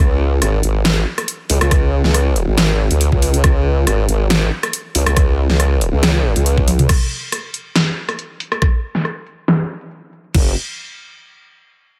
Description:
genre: heavy wobble dubstep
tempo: 139 BPM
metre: 4/4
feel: swing 53% on 16ths, half-time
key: unclear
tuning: A4 = 440 Hz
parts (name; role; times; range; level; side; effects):
- formant-sweep wobble bass; bass; 0.0-6.9, 10.3-10.5 s; F#1 to D2; -17 LUFS; equal; chorus, overdrive
- dubstep drum kit; drums; 0.4-10.4 s; crash cymbal, hi-hat, rim click, snare drum, toms; -21 LUFS; equal; overdrive, low-pass filter on hats, low-pass filter on snare, low-pass filter on toms, low-pass filter on cymbals, low-pass filter on room
- electronic kick drum; drums; 1.7-10.4 s; none; -17 LUFS; equal; overdrive
room: little or no reverb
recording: none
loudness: -16 LUFS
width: mono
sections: 0.0-6.9 A section; 6.9-10.3 B section; 10.3-12.0 C section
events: drop 0.0-6.9; drum fill 6.7; filter sweep on drum 6.9-10.3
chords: none

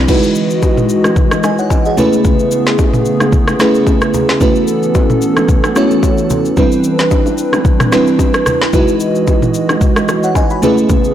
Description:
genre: amapiano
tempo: 111 BPM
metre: 4/4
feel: swing 55% on 16ths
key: E major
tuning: A4 = 441 Hz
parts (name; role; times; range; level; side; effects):
- crystalline FM electric piano; accompaniment; 0.0-11.1 s; F#3 to B5; -14 LUFS; right 1 dB; chorus
- hollow soft pad; sustained chords; 0.0-11.1 s; C#3 to D#5; -17 LUFS; right 1 dB; chorus, sidechain pumping
- afro-pop drum kit; drums; 0.1-11.1 s; crash cymbal, kick drum, rim click, shaker, snare drum, toms; -14 LUFS; equal; none
- congas and bongos; percussion; 0.1-11.0 s; none; -22 LUFS; left 2 dB; none
room: light reverb, digital ambience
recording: blown-out, overdriven recording, overdrive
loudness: -10 LUFS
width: side -11 dB against mid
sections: 0.1-11.1 A section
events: none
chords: 0.1 Emaj9; 2.0 Amaj9; 4.4 B9sus4; 6.6 Cmaj9; 8.7 Emaj9; 10.6 Amaj9

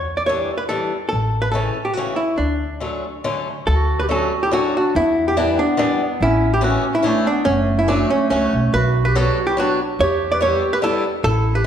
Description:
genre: musette waltz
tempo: 143 BPM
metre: 3/4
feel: straight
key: D major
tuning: A4 = 440 Hz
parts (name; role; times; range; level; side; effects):
- archtop guitar, miked and amplified; melody; 0.0-11.7 s; C#4 to D5; -19 LUFS; equal; none
- upright bass; bass; 0.0-11.7 s; F#1 to E2; -22 LUFS; equal; none
- picked swing-style acoustic guitar; accompaniment; 0.3-11.7 s; C#3 to F#4; -24 LUFS; left 3 dB; none
- warm clarinet; second line; 3.7-11.6 s; A3 to B4; -23 LUFS; right 3 dB; none
room: wet recital hall reverb, RT60 1.6 s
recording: heard from further back in the room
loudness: -16 LUFS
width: side -9 dB against mid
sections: 0.0-3.7 A section; 3.7-11.7 A section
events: none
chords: 0.0 Em7; 1.1 A; 2.4 Dmaj7; 5.0 Em7; 6.2 A; 7.5 F#m; 8.7 Bm; 10.0 Em7

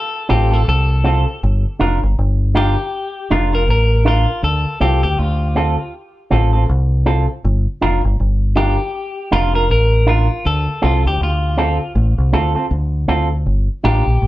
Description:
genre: roots reggae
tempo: 80 BPM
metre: 4/4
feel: swing 59% on 16ths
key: G minor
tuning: A4 = 440 Hz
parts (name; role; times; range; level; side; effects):
- clean electric guitar; melody; 0.0-14.3 s; F4 to Bb4; -21 LUFS; left 2 dB; spring reverb
- electric guitar with an envelope filter; accompaniment; 0.3-14.0 s; C4 to Bb4; -19 LUFS; right 2 dB; none
- deep dub fingered electric bass; bass; 0.3-14.3 s; F1 to D2; -15 LUFS; equal; none
room: moderate studio ambience, RT60 0.5 s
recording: band playing live in one room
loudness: -14 LUFS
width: side -16 dB against mid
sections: 0.0-13.5 A section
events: clean electric guitar solo 0.0-13.5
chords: 0.0 Dm7 (rootless); 1.4 Gm7; 4.4 Dm7; 7.4 Gm7; 10.4 Dm7; 13.5 Gm7

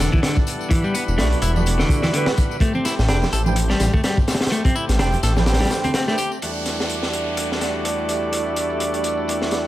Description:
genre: breakbeat, breaks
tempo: 126 BPM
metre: 4/4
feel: swing 57% on 16ths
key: E minor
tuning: A4 = 440 Hz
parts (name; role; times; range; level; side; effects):
- tonewheel organ; sustained chords; 0.0-9.7 s; E2 to F#5; -28 LUFS; left 1 dB; overdrive, sidechain pumping
- clean electric guitar; riff; 0.0-6.3 s; D3 to A4; -24 LUFS; left 1 dB; overdrive, tape echo
- detuned saw bass; bass; 0.0-5.6 s; E1 to B1; -19 LUFS; equal; none
- crunchy breakbeat drum kit; drums; 0.0-9.6 s; hi-hat, kick drum, snare drum; -22 LUFS; equal; high-pass filter on kick, high-pass filter on hats, high-pass filter on snare, high-pass filter on room
- tambourine; drums; 0.1-9.7 s; none; -36 LUFS; left 7 dB; low-pass filter on perc, low-pass filter on room, tape echo
- congas; percussion; 0.1-5.9 s; none; -30 LUFS; right 4 dB; tape echo
- mellow horn section; stabs; 1.2-9.7 s; A3 to G5; -26 LUFS; right 2 dB; vintage 12-bit sampler grit, low-pass filter, tape echo
- downlifter; sound effects; 6.4-9.7 s; none; -32 LUFS; equal; none
room: light reverb, studio reverb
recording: echo-heavy mix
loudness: -18 LUFS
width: side -14 dB against mid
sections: 0.0-6.4 A section; 6.4-9.7 B section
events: filter sweep on horn section 6.4-9.7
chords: 0.0 Em11; 2.6 Am11; 6.4 Em11

